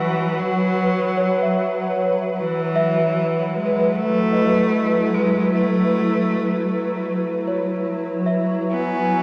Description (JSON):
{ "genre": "ambient", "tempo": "76 BPM", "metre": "4/4", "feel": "straight", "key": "unclear", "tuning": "A4 = 440 Hz", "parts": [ { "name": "bright cello", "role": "melody", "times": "0.0-9.2 s", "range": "E3 to B3", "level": "-25 LUFS", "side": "equal", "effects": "delay" }, { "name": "granular cloud pad", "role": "sustained chords", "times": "0.0-9.2 s", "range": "F#3 to F#5", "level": "-23 LUFS", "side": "equal", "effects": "built-in reverb" }, { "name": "celesta", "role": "arpeggios", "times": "0.0-9.2 s", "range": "C#5 to C#6", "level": "-29 LUFS", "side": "equal", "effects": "delay" }, { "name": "glass harmonica", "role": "texture", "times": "8.7-9.2 s", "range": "G#5", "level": "-26 LUFS", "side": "equal", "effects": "none" } ], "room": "wet huge ambient reverb, RT60 8.3 s", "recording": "worn, warbling old tape, cassette tape, warbly pitch drift", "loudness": "-20 LUFS", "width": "mono", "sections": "0.0-9.2 A section", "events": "none", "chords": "0.0 Bsus4; 2.3 Asus2/E; 8.7 F#sus2", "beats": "0.77 1.55 | 2.35 3.13 3.92 4.71 | 5.50 6.29 7.08 7.87 | 8.66" }